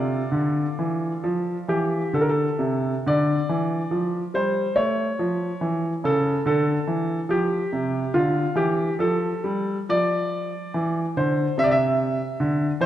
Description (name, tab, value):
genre	classical, baroque-style suite movement for grand piano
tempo	63-73 BPM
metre	4/4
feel	rubato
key	D minor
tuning	A4 = 444 Hz
part	bright grand piano	solo	0.0-12.9 s	C3 to E5	-21 LUFS	equal	none
room	moderate concert hall reverb, RT60 2.0 s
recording	dark, warm production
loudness	-21 LUFS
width	side -12 dB against mid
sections	0.0-3.1 A section; 3.1-12.9 B section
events	none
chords	0.0 Dm; 4.8 A; 6.5 Dm; 9.9 Dm9; 11.6 C